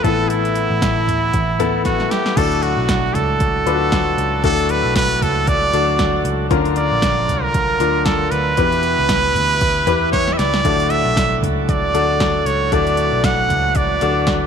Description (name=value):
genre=piano-driven pop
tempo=116 BPM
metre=4/4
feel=swing 56% on 16ths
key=D major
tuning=A4 = 440 Hz
part: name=brilliant trumpet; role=melody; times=0.0-14.5 s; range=E4 to F#5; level=-19 LUFS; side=right 3 dB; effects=slapback echo
part: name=clear concert grand piano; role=accompaniment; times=0.0-14.5 s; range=A2 to B4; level=-21 LUFS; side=left 10 dB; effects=none
part: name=bright tonewheel organ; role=sustained chords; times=0.0-14.5 s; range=E3 to B4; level=-26 LUFS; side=right 11 dB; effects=wide subtle chorus
part: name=vintage muted picked electric bass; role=bass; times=0.0-14.5 s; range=A1 to E2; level=-22 LUFS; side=right 1 dB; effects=none
part: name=deep house drum kit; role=drums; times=0.0-14.4 s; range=crash cymbal, hi-hat, kick drum, snare drum, toms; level=-22 LUFS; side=right 1 dB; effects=overdrive
room=moderate echo chamber reverb, RT60 2.5 s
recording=1960s-style stereo with parts hard left and right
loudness=-15 LUFS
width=side -7 dB against mid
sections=0.0-2.4 A section; 2.4-14.5 B section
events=drum fill 1.9-2.4, 10.1-10.6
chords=0.0 Asus2; 2.4 D; 6.5 Bb; 8.6 Em; 10.6 D